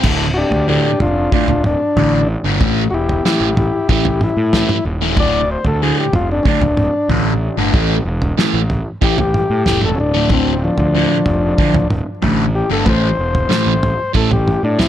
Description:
psychedelic rock; 94 BPM; 4/4; straight; D minor; A4 = 441 Hz
fuzz guitar; riff; 0.0-14.9 s; D2 to A3; -17 LUFS; equal; distortion, phaser
fuzz picked electric bass; bass; 0.0-14.9 s; D1 to A2; -19 LUFS; equal; overdrive
cloth-damped thuddy drum kit; drums; 0.0-14.9 s; crash cymbal, kick drum, snare drum, toms; -19 LUFS; right 1 dB
overdriven combo organ; melody; 0.3-14.9 s; F3 to D5; -18 LUFS; left 2 dB; analog delay
light reverb, studio reverb; -13 LUFS; side -11 dB against mid
0.0-14.9 A section
transistor combo organ solo 0.0-14.9
0.0 Dm; 2.6 A5; 5.2 D5; 7.7 A5; 10.3 Dm; 12.9 Am
| 0.04 0.69 1.33 1.97 | 2.61 3.25 3.89 4.53 | 5.17 5.82 6.46 7.10 | 7.74 8.38 9.02 9.66 | 10.30 10.94 11.59 12.23 | 12.87 13.51 14.15 14.79

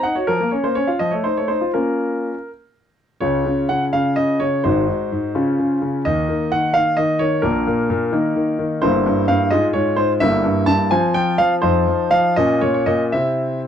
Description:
classical-period piano sonatina; 77-88 BPM (dotted quarters); 6/8; rubato; Bb minor, Db major from 3.2 s, F minor from 8.8 s; A4 = 440 Hz
clear concert grand piano; solo; 0.0-13.7 s; G1 to A5; -16 LUFS; equal
light reverb; dark, warm production; -16 LUFS; side -8 dB against mid
0.0-3.2 A section; 3.2-13.7 B section
0.3 Bbm/F; 1.0 F7; 1.7 Bbm; 3.2 Db; 4.6 Ab7; 5.4 Db; 6.0 Eb5; 7.4 Bb; 8.1 Eb5; 8.8 C7/G; 9.5 Fm/Ab; 10.2 Edim/G; 10.9 F5; 12.4 Bbm; 13.1 C
| 0.28 0.99 | 1.74 2.48 | 3.22 3.93 | 4.64 5.35 | 6.05 6.75 | 7.43 8.13 | 8.83 9.53 | 10.22 10.92 | 11.64 12.37 | 13.13

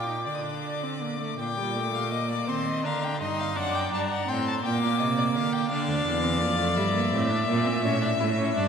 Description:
classical, baroque-style fugue for string quartet; 56 BPM (dotted quarters); 6/8; straight; G minor; A4 = 443 Hz
rich violin; melody; 0.0-8.7 s; D5 to Eb6; -30 LUFS; left 6 dB
clear violin; second line; 0.0-8.7 s; C5 to A5; -32 LUFS; left 3 dB
rich viola; accompaniment; 0.0-8.7 s; G3 to E4; -29 LUFS; right 2 dB
clear cello; bass; 0.0-8.7 s; D2 to Eb3; -29 LUFS; right 3 dB
wet church reverb, RT60 2.7 s; -24 LUFS; side -7 dB against mid
0.0-1.4 A section; 1.4-8.7 B section
0.3 D5; 1.4 Gm/Bb; 2.5 Cm; 3.6 D/F#; 4.6 Gm/Bb; 5.7 Dm; 6.8 Gm; 7.8 A
0.26 | 1.38 2.48 | 3.57 4.64 | 5.71 6.77 | 7.84

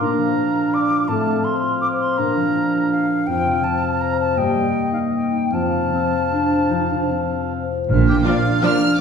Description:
classical; 141-178 BPM; 3/4; rubato; Bb major; A4 = 440 Hz
dark clarinet; second line; 0.0-9.0 s; Bb3 to Eb4; -22 LUFS; right 1 dB
mellow concert flute; second line; 0.0-9.0 s; F5 to F6; -24 LUFS; left 2 dB
mellow oboe; second line; 0.0-9.0 s; F4 to F5; -27 LUFS; right 4 dB
dark French horn section; sustained chords; 0.0-8.8 s; F3 to D4; -27 LUFS; left 1 dB
concert harp; arpeggios; 0.0-9.0 s; F2 to D6; -24 LUFS; left 6 dB
rich symphonic cello section; bass; 7.9-8.2 s; Bb2; -24 LUFS; right 6 dB
rich symphonic double bass section; bass; 7.9-9.0 s; Bb1; -22 LUFS; right 4 dB
timpani; percussion; 7.9-8.4 s; Bb2; -23 LUFS; right 1 dB
warm symphonic violin section; melody; 8.1-9.0 s; F5 to F6; -26 LUFS; left 2 dB
bright symphonic viola section; accompaniment; 8.2-8.7 s; F3 to D4; -25 LUFS; right 2 dB
warm symphonic violin section; second line; 8.3-8.7 s; F4 to Bb4; -30 LUFS; right 2 dB
dark trombone section; sustained chords; 8.3-8.8 s; Bb2 to F3; -27 LUFS; right 5 dB
dark trumpet section; stabs; 8.3-8.8 s; D5; -27 LUFS; right 2 dB
wet recital hall reverb, RT60 1.3 s; heard from further back in the room; -17 LUFS; side -6 dB against mid
0.0-7.9 A section; 7.9-9.0 B section
0.0 Bb; 1.1 F/A; 2.2 Bb; 3.3 F; 4.4 Eb/G; 5.5 F; 7.9 Bb
| 0.01 0.37 0.74 | 1.10 1.46 1.83 | 2.19 2.55 2.93 | 3.28 3.64 4.02 | 4.38 4.74 5.13 | 5.52 5.92 6.33 | 6.71 7.11 7.52 | 7.90 8.26 8.64 | 8.99

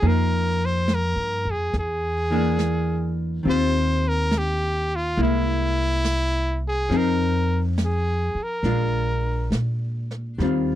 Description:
jazz ballad; 70 BPM; 4/4; swing 68% on 8ths; A4 = 441 Hz
brilliant trumpet; melody; 0.0-9.6 s; E4 to C5; -25 LUFS; equal
archtop guitar, miked and amplified; accompaniment; 0.0-10.8 s; Eb3 to Ab4; -26 LUFS; left 2 dB
upright bass; bass; 0.0-10.8 s; Bb1 to Bb2; -24 LUFS; equal
jazz brush drum kit; drums; 0.0-10.8 s; brushed snare drum, hi-hat, snare drum; -27 LUFS; right 1 dB
little or no reverb; dry, close 1970s-style studio recording; -21 LUFS; side -12 dB against mid
0.0-10.4 A section
0.0 Fm11; 1.7 E7#11; 3.5 Eb69; 5.2 C7b13; 6.9 Fm7; 8.6 Bb7
| 0.02 0.88 1.74 2.59 | 3.45 4.31 5.17 6.04 | 6.90 7.77 8.64 9.52 | 10.40

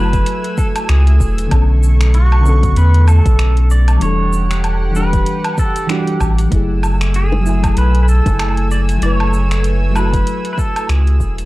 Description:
sunset chillout; 96 BPM; 4/4; swing 58% on 16ths; F# minor; A4 = 437 Hz
pedal steel guitar; melody; 0.0-11.4 s; F#4 to D5; -23 LUFS; right 2 dB; tape echo
mellow FM electric piano; accompaniment; 0.0-11.5 s; D3 to G#5; -21 LUFS; moving between left 3 dB and right 4 dB; chorus, auto-pan
lush unison pad; sustained chords; 0.0-11.5 s; A3 to E6; -26 LUFS; left 1 dB; chorus
warm sub bass; bass; 0.0-11.5 s; E1 to E2; -12 LUFS; equal; transformer saturation
deep house drum kit; drums; 0.1-11.5 s; finger snaps, hi-hat, shaker, woodblock; -24 LUFS; right 1 dB; overdrive
electronic kick drum; drums; 0.1-11.3 s; -18 LUFS; equal; overdrive
bongos; percussion; 7.3-8.4 s; -23 LUFS; left 4 dB
little or no reverb; dry, gritty hardware recording, cassette tape; -11 LUFS; side -18 dB against mid
0.0-11.5 A section
fade-out 9.8-11.5
0.0 F#m9; 1.5 Bm9; 4.0 Em9; 6.5 F#m9
0.27 0.89 | 1.52 2.14 2.77 3.39 | 4.02 4.64 5.27 5.89 | 6.52 7.14 7.77 8.39 | 9.02 9.64 10.27 10.89

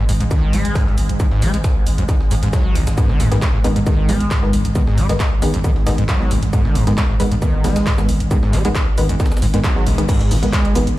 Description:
driving peak-time techno; 135 BPM; 4/4; straight; G# minor; A4 = 435 Hz
screaming distorted acid line; riff; 0.0-10.8 s; G#1 to G#3; -22 LUFS; equal; distortion, analog chorus, sidechain pumping, digital delay
swarming drone; drone; 0.0-10.1 s; G#2 to G#3; -26 LUFS; equal; built-in reverb, sidechain pumping
growling 808-style bass; bass; 0.1-11.0 s; G#1; -20 LUFS; equal; overdrive, sidechain pumping, low-pass filter
breakbeat sampler-style drum kit; drums; 0.1-10.9 s; hi-hat, shaker, snare drum; -34 LUFS; equal; high-pass filter on perc, studio reverb, high-pass filter on snare, high-pass filter on hats
techno drum kit; drums; 0.1-11.0 s; crash cymbal, handclaps, hi-hat, shaker; -28 LUFS; equal; overdrive, studio reverb
electronic kick drum; drums; 0.3-10.6 s; -17 LUFS; equal; distortion, overdrive, studio reverb
filtered dub chord stab; stabs; 3.0-10.9 s; D#3 to B3; -23 LUFS; left 1 dB; chorus, sidechain pumping, digital delay
little or no reverb; played on a big sound system in a bare room, large studio reverb; -14 LUFS; side -16 dB against mid
0.0-10.1 A section
band accent 9.6
0.0 G#m
0.31 0.76 | 1.20 1.64 2.09 2.53 | 2.98 3.42 3.87 4.31 | 4.75 5.20 5.64 6.09 | 6.53 6.98 7.42 7.87 | 8.31 8.76 9.20 9.64 | 10.09 10.53

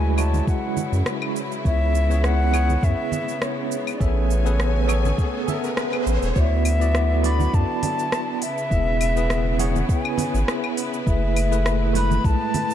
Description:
sunset chillout; 102 BPM; 4/4; swing 54% on 16ths; A4 = 440 Hz
mellow silver concert flute; melody; 0.0-12.7 s; C#5 to B5; -28 LUFS; left 1 dB; ping-pong delay
bell-like tine electric piano; accompaniment; 0.0-12.7 s; G#3 to E5; -26 LUFS; right 1 dB; medium stereo tremolo, auto-pan, ping-pong delay
bright studio string section; sustained chords; 0.0-12.7 s; A2 to G#5; -32 LUFS; equal
round analog bass; bass; 0.0-12.4 s; E1 to F#2; -21 LUFS; equal
smooth R&B drum kit; drums; 0.2-12.7 s; cabasa, claves, hi-hat, rim click; -29 LUFS; left 1 dB
congas; percussion; 0.2-12.7 s; -30 LUFS; right 4 dB
electronic kick drum; drums; 0.5-12.4 s; -22 LUFS; equal
riser; sound effects; 3.3-6.4 s; -32 LUFS; equal
light reverb; dark, warm production; -19 LUFS; side -10 dB against mid
0.0-6.4 A section; 6.4-12.7 B section
riser 3.3-6.4
0.0 Dmaj9#11; 1.7 C#m7; 4.0 Amaj9; 6.4 D69; 8.4 C#m7/E; 11.1 F#m11
0.48 1.06 | 1.65 2.24 2.83 3.42 | 4.01 4.59 5.18 5.77 | 6.36 6.95 7.54 8.12 | 8.71 9.30 9.89 10.48 | 11.06 11.65 12.24

